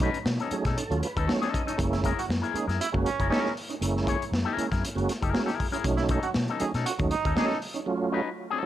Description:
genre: funk.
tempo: 118 BPM.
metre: 4/4.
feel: straight.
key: unclear.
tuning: A4 = 440 Hz.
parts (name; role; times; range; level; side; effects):
electric guitar with an envelope filter; accompaniment; 0.0-8.7 s; Db4 to Db5; -32 LUFS; left 7 dB; none.
tonewheel organ; stabs; 0.0-8.7 s; Gb3 to Eb5; -30 LUFS; right 4 dB; chorus vibrato, stopped rotary speaker, analog delay.
vintage muted fingered electric bass; bass; 0.0-7.3 s; Gb1 to Cb3; -30 LUFS; left 1 dB; none.
crunchy breakbeat drum kit; drums; 0.0-7.9 s; hi-hat, kick drum, snare drum; -30 LUFS; left 1 dB; none.
brilliant trombone; second line; 1.9-7.6 s; Db4 to Ab4; -31 LUFS; right 6 dB; none.
room: light reverb, small room ambience.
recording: none.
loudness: -25 LUFS.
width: side -12 dB against mid.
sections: 0.0-8.7 A section.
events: tonewheel organ fill 0.3-1.8.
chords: 0.0 Cb9; 1.8 Gb9; 5.8 Cb9.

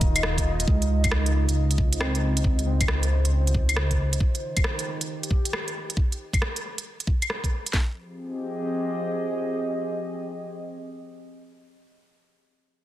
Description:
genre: future garage.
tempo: 136 BPM.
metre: 4/4.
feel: swing 65% on 16ths.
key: F minor.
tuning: A4 = 440 Hz.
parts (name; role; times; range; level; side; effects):
overdriven tine electric piano; accompaniment; 0.0-2.8 s; Eb3 to C4; -33 LUFS; right 4 dB; medium tremolo, sidechain pumping, tape echo.
warbly tape-like pad; sustained chords; 0.0-12.0 s; Db3 to Eb5; -31 LUFS; equal; chorus, built-in reverb, sidechain pumping.
dark detuned saw bass; bass; 0.0-4.2 s; Eb1 to Db2; -23 LUFS; equal; sidechain pumping.
garage drum kit; drums; 0.0-7.9 s; kick drum, snare drum; -23 LUFS; equal; none.
organic electronic drum kit; drums; 0.0-7.7 s; claves, hi-hat, rim click; -28 LUFS; equal; soft clipping on snare.
room: light reverb.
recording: dense, heavily limited modern master.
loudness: -23 LUFS.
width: side -14 dB against mid.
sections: 0.7-7.7 A section; 7.7-11.3 B section.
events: none.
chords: 0.0 Eb; 0.7 Dbmaj7; 4.2 Eb; 7.7 Fm7.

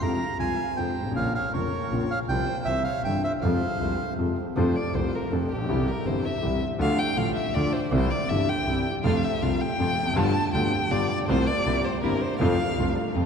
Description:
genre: tango.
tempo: 160 BPM.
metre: 3/4.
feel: rubato.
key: F harmonic minor, F major from 4.6 s.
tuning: A4 = 441 Hz.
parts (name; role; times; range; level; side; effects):
bandoneon; melody; 0.0-4.1 s; Db5 to Bb5; -31 LUFS; right 4 dB; none.
dark violin; second line; 0.0-13.1 s; G4 to A5; -30 LUFS; left 1 dB; none.
clear concert grand piano; accompaniment; 0.0-13.3 s; F1 to F4; -26 LUFS; left 2 dB; none.
clear double bass; bass; 0.0-13.3 s; F1 to F2; -28 LUFS; right 1 dB; none.
clear studio string section; stabs; 9.0-13.3 s; G3 to F4; -35 LUFS; right 4 dB; none.
room: wet cathedral reverb, RT60 5.4 s.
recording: recorded in a church or concert hall.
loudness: -23 LUFS.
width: side -6 dB against mid.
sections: 0.0-4.6 A section; 4.6-13.3 B section.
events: violin solo 4.6-13.3.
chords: 0.0 Fm; 1.2 Bbm; 2.3 Csus4; 2.7 C; 3.4 Fm; 4.6 F; 5.7 C; 6.8 Dm; 7.9 C; 9.0 F; 10.2 G7; 11.3 F/C; 11.7 C7; 12.4 F.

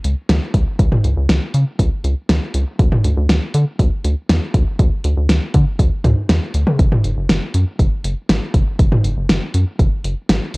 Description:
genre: synth-pop.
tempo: 120 BPM.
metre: 4/4.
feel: straight.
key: unclear.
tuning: A4 = 440 Hz.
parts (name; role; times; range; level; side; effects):
rubbery square bass; bass; 0.0-10.6 s; F#1 to D3; -17 LUFS; equal; none.
deep house drum kit; drums; 0.0-10.6 s; hi-hat, kick drum, snare drum, toms; -15 LUFS; equal; cassette tape.
room: little or no reverb.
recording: home recording on cassette.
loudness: -14 LUFS.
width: side -27 dB against mid.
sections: 0.0-10.6 A section.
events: none.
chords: none.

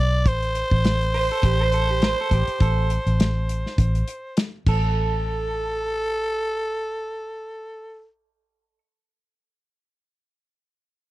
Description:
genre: straight-eighth soul blues.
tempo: 102 BPM.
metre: 4/4.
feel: swing 56% on 16ths.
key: A minor.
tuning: A4 = 440 Hz.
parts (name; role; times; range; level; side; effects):
growling tenor saxophone; melody; 0.0-8.1 s; A4 to D5; -26 LUFS; equal; none.
vintage muted fingered electric bass; bass; 0.0-8.8 s; A1 to B1; -22 LUFS; equal; none.
warm soul drum kit; drums; 0.3-4.8 s; crash cymbal, hi-hat, kick drum, snare drum; -22 LUFS; equal; none.
electric guitar through a small old amp; second line; 1.1-8.8 s; G4 to C5; -29 LUFS; right 8 dB; spring reverb.
room: little or no reverb.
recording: dry, close 1970s-style studio recording.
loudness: -20 LUFS.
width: side -17 dB against mid.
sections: 0.0-5.0 A section; 5.0-7.3 B section.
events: none.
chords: 0.3 Am; 4.7 N.C..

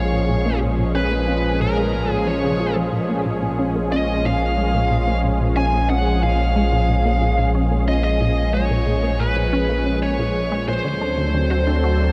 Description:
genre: ambient, sequencer-driven space music.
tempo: 91 BPM.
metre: 4/4.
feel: straight.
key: Bb minor.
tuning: A4 = 440 Hz.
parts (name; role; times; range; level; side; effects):
bluesy overdriven lead guitar; melody; 0.0-12.1 s; Bb4 to Ab5; -26 LUFS; equal; distortion, tape echo.
sweeping resonant pad; sustained chords; 0.0-12.1 s; Bb2 to A4; -25 LUFS; equal; chorus.
warm sub bass; bass; 0.0-12.1 s; Bb1 to D2; -25 LUFS; equal; none.
resonant blip pluck; riff; 0.1-11.9 s; Bb2 to F#4; -27 LUFS; equal; chorus, tape echo.
room: wet huge ambient reverb, RT60 7.6 s.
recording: in a vast, echoing space.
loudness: -20 LUFS.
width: mono.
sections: 0.0-12.1 A section.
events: filter sweep on synth arpeggio sound 0.0-12.1.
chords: 0.0 Bbm7; 10.8 D7.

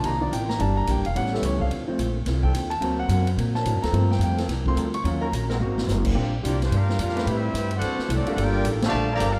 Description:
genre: jazz, big band swing.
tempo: 216 BPM.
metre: 4/4.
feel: swing 61% on 8ths.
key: unclear.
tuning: A4 = 437 Hz.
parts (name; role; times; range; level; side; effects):
archtop guitar, miked and amplified; accompaniment; 0.0-9.4 s; A2 to B4; -36 LUFS; equal; none.
clear concert grand piano; accompaniment; 0.0-9.1 s; Eb3 to Db6; -30 LUFS; equal; none.
mellow trombone section; sustained chords; 0.0-9.4 s; Eb3 to B4; -37 LUFS; equal; none.
upright bass; bass; 0.0-9.4 s; E1 to Bb2; -27 LUFS; equal; none.
swinging big-band drum kit; drums; 0.0-9.3 s; crash cymbal, hi-hat, kick drum, ride cymbal, snare drum; -34 LUFS; equal; none.
clear trombone section; second line; 6.4-9.3 s; D3 to G4; -32 LUFS; equal; none.
clear trumpet section; melody; 6.5-9.4 s; A3 to Bb5; -31 LUFS; equal; none.
room: light reverb.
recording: dark, warm production.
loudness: -24 LUFS.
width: mono.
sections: 0.0-6.2 A section; 6.2-9.4 B section.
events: grand piano solo 0.0-6.2; drum fill 5.6; band accent 8.8.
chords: 0.0 Cm11; 0.6 Em7b5; 1.2 A7; 1.7 Dm7; 2.8 D7b13; 3.9 Gm11; 5.0 Ebm7; 5.6 Ab9; 6.2 Bb6; 7.3 Am9; 7.8 D7; 8.4 Gm7.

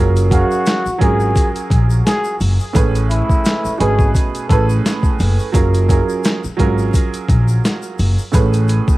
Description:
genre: hip hop, boom-bap hip-hop.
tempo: 86 BPM.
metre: 4/4.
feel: swing 56% on 16ths.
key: unclear.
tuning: A4 = 439 Hz.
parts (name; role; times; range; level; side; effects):
warm upright piano; accompaniment; 0.0-9.0 s; A2 to E#5; -20 LUFS; right 5 dB; high-pass filter, low-pass filter.
upright bass; bass; 0.0-8.8 s; F#1 to A#1; -16 LUFS; equal; none.
boom bap sampler-style drum kit; drums; 0.2-9.0 s; hi-hat, kick drum, snare drum; -16 LUFS; equal; cassette tape.
tube shaker; percussion; 0.2-9.0 s; none; -38 LUFS; left 9 dB; none.
trumpet with plunger mute; melody; 0.3-4.7 s; E4 to A4; -21 LUFS; left 1 dB; high-pass filter, low-pass filter, cassette tape, tape echo.
room: studio reverb.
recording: home recording on cassette, vinyl crackle.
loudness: -13 LUFS.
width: side -18 dB against mid.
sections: 0.0-9.0 A section.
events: none.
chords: 0.0 F#maj9; 2.8 Amaj9; 5.5 F#maj9; 8.3 Amaj9.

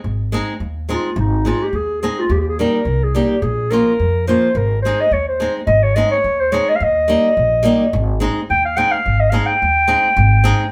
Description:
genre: balkan folk, Balkan wedding band.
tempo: 107 BPM.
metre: 2/4.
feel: swing 56% on 16ths.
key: Ab major.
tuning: A4 = 440 Hz.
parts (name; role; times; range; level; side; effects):
upright bass; bass; 0.0-10.5 s; Ab1 to F2; -21 LUFS; equal; none.
flamenco guitar; accompaniment; 0.3-10.6 s; F3 to Ab4; -22 LUFS; equal; none.
dark clarinet; melody; 0.9-10.7 s; Eb4 to G5; -19 LUFS; equal; none.
room: moderate studio reverb, RT60 0.8 s.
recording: band playing live in one room.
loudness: -16 LUFS.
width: mono.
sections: 0.0-10.7 A section.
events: clarinet solo 0.0-10.7.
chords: 0.0 Ab; 2.3 Eb; 3.4 Bbm; 4.6 Ab; 6.8 Eb; 7.9 Ab.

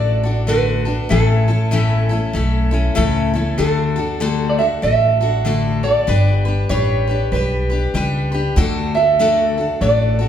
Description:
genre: honky-tonk and classic country.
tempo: 96 BPM.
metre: 4/4.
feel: swing 62% on 8ths.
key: D major.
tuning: A4 = 445 Hz.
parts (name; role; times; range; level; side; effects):
electric guitar through a small old amp; melody; 0.0-10.3 s; A4 to E5; -19 LUFS; right 3 dB; none.
picked steel-string acoustic guitar; accompaniment; 0.0-10.3 s; A2 to B4; -20 LUFS; left 4 dB; none.
upright bass; bass; 0.0-10.3 s; G1 to D2; -18 LUFS; equal; none.
room: wet recital hall reverb, RT60 1.4 s.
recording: recorded in a church or concert hall.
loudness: -15 LUFS.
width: side -9 dB against mid.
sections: 0.0-10.3 A section.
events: none.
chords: 0.0 D; 1.1 A; 3.6 D; 6.1 G; 8.6 D.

